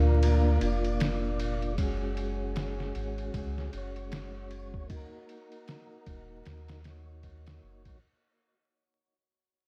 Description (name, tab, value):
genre	trip hop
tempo	77 BPM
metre	4/4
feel	swing 59% on 16ths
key	unclear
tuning	A4 = 440 Hz
part	mellow tonewheel organ	accompaniment	0.0-8.0 s	G#3 to D5	-38 LUFS	equal	overdrive, fast rotary speaker, harmonic tremolo, tape echo
part	string machine, cellos	sustained chords	0.0-8.0 s	Bb3 to Eb6	-42 LUFS	equal	phaser, ensemble chorus
part	soft dub sub bass	bass	0.0-8.0 s	Eb1 to Eb2	-32 LUFS	equal	tube saturation
part	trip hop sampler-style drum kit	drums	0.2-8.0 s	kick drum, ride cymbal, snare drum	-40 LUFS	equal	overdrive
room	little or no reverb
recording	dark, warm production, vinyl crackle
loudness	-30 LUFS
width	mono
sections	0.0-8.0 A section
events	fade-out 0.0-8.0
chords	0.0 Bb; 1.8 F#sus2; 4.9 Ebm